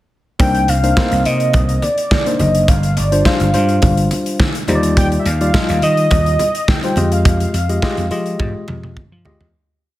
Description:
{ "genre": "early-eighties boogie funk", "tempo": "105 BPM", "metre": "4/4", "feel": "straight", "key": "C minor", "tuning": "A4 = 440 Hz", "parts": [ { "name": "warm velvety synth lead", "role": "melody", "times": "0.4-8.9 s", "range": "D5 to G5", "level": "-19 LUFS", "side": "equal", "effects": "chorus" }, { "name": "mellow tine electric piano", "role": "accompaniment", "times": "0.4-9.5 s", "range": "F3 to Eb5", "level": "-20 LUFS", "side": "left 2 dB", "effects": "overdrive" }, { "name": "vintage slap bass", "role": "bass", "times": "0.4-9.5 s", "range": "F#1 to F3", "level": "-17 LUFS", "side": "equal", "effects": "none" }, { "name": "modern studio drum kit", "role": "drums", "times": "0.4-9.5 s", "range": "hi-hat, kick drum, snare drum, toms", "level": "-18 LUFS", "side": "equal", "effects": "gated reverb" }, { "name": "congas", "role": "percussion", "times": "0.4-9.4 s", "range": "none", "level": "-26 LUFS", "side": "right 1 dB", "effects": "none" } ], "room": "light reverb, studio reverb", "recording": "none", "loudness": "-13 LUFS", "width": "side -15 dB against mid", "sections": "0.4-9.5 verse", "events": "fade-out 7.3-9.5; drum fill 8.4-9.5", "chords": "0.4 Cm9; 2.7 G7sus4; 4.7 Ebmaj9; 7.0 Fm9" }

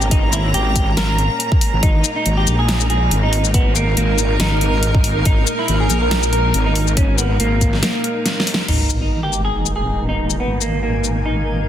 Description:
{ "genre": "heavy wobble dubstep", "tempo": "140 BPM", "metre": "4/4", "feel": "swing 55% on 16ths, half-time", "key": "G# minor", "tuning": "A4 = 440 Hz", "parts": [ { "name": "semi-hollow electric guitar", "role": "melody", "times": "0.0-11.7 s", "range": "A#3 to A#4", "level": "-22 LUFS", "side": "equal", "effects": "lush chorus, tape echo" }, { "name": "rich studio string section", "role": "sustained chords", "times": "0.0-11.7 s", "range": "A#2 to D#4", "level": "-27 LUFS", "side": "equal", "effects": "sidechain pumping, low-pass filter" }, { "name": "wobble bass", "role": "bass", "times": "0.0-11.7 s", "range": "G#1 to A#1", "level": "-18 LUFS", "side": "equal", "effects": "chorus, overdrive" }, { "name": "dubstep drum kit", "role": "drums", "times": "0.0-11.1 s", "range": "crash cymbal, hi-hat, shaker, snare drum", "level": "-21 LUFS", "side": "left 2 dB", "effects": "none" }, { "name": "granular cloud pad", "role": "texture", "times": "0.0-11.7 s", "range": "A#4 to A#5", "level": "-25 LUFS", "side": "right 1 dB", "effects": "built-in reverb, sidechain pumping" }, { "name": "electronic kick drum", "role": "drums", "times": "0.1-7.7 s", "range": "none", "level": "-16 LUFS", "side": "equal", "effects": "none" }, { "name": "sub drop", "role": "sound effects", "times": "8.7-10.4 s", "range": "none", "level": "-23 LUFS", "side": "equal", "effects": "none" } ], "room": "light reverb, digital ambience", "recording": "dense, heavily limited modern master", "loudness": "-15 LUFS", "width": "side -10 dB against mid", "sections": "0.0-8.7 A section; 8.7-11.7 B section", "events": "drop 0.0-8.7; break 7.8-8.7; drum fill 8.3-8.7; band accent 8.5; impact 8.7-10.4; filter sweep on string section 8.7-11.7", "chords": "0.0 G#sus2; 8.7 G#madd9" }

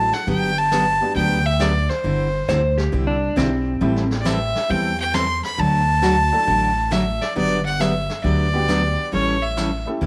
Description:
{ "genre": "country, western swing", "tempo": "136 BPM", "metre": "4/4", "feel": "swing 66% on 8ths", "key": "G major", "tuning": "A4 = 443 Hz", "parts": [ { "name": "clear fiddle", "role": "melody", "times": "0.0-9.9 s", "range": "C5 to C6", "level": "-23 LUFS", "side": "equal", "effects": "none" }, { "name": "clear upright piano", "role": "accompaniment", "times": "0.0-10.1 s", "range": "F#3 to A4", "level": "-31 LUFS", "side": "equal", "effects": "none" }, { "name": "upright bass", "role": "bass", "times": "0.0-10.1 s", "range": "E1 to E2", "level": "-26 LUFS", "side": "equal", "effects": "none" }, { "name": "vintage brush drum kit", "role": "drums", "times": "0.1-10.1 s", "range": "brushed snare drum, hi-hat, snare drum", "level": "-35 LUFS", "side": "equal", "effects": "none" }, { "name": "picked steel-string acoustic guitar", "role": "accompaniment", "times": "0.3-10.1 s", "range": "D3 to A4", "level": "-26 LUFS", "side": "equal", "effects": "none" }, { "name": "clean lap steel guitar", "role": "second line", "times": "2.5-4.2 s", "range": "C4 to C5", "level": "-24 LUFS", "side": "equal", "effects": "none" } ], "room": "light reverb, small room ambience", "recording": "none", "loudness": "-20 LUFS", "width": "mono", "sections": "0.0-10.1 A section", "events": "none", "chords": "0.3 Gmaj7; 2.0 Cadd9/G; 3.8 Am7; 5.6 D; 7.4 Gmaj7; 9.1 A7" }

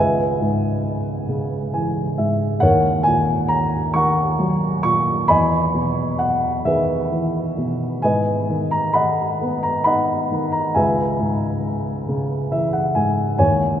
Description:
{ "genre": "classical, lyrical solo piano", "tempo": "45 BPM (dotted quarters)", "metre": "6/8", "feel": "rubato", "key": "unclear", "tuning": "A4 = 440 Hz", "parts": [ { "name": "dark baby grand piano", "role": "solo", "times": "0.0-13.8 s", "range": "C#2 to C#6", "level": "-17 LUFS", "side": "equal", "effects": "none" } ], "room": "wet cathedral reverb, RT60 6.5 s", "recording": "recorded in a church or concert hall", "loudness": "-17 LUFS", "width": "side -10 dB against mid", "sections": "0.0-13.8 A section", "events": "grand piano fill 1.3-2.6, 12.1-13.4", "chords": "0.0 C#m7; 2.6 D#m7; 5.3 Emaj9; 8.0 G#m7; 10.8 C#m7" }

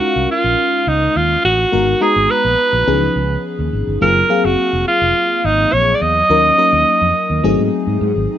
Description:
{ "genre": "polished 1980s jazz-funk pop", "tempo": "105 BPM", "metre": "4/4", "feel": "straight", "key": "Db major", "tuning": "A4 = 440 Hz", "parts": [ { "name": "bright alto saxophone", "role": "melody", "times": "0.0-7.7 s", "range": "Eb4 to Eb5", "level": "-14 LUFS", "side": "right 2 dB", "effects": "none" }, { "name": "FM electric piano with soft pad layer", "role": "accompaniment", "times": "0.0-8.4 s", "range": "Fb3 to Bb5", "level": "-19 LUFS", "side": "left 4 dB", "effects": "wide subtle chorus" }, { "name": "fretless electric bass", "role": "bass", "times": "0.2-8.3 s", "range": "F1 to Ab2", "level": "-20 LUFS", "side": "equal", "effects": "lush chorus" } ], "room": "light reverb", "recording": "none", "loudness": "-12 LUFS", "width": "side -10 dB against mid", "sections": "0.0-8.4 A section", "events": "none", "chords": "0.0 Db69; 1.7 Abm9; 2.9 Db9; 4.0 Gbmaj9#11; 6.3 Ebm7; 7.4 Ab7b9" }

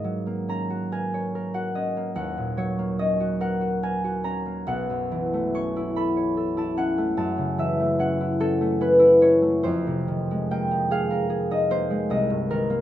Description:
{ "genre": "classical, solo harp piece", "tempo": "48 BPM (dotted quarters)", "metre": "6/8", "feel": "uneven beats, rubato", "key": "unclear", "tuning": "A4 = 441 Hz", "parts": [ { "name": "concert harp", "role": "solo", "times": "0.0-12.8 s", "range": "B1 to C#6", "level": "-21 LUFS", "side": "equal", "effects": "none" } ], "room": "light reverb", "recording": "minimal, uncompressed stereo recording", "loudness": "-21 LUFS", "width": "side -12 dB against mid", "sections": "0.0-12.8 A section", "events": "none", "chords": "0.0 G#m11; 2.2 D#m7; 4.7 B9sus4; 7.2 F#m7; 9.6 Fm11; 12.1 Cm7" }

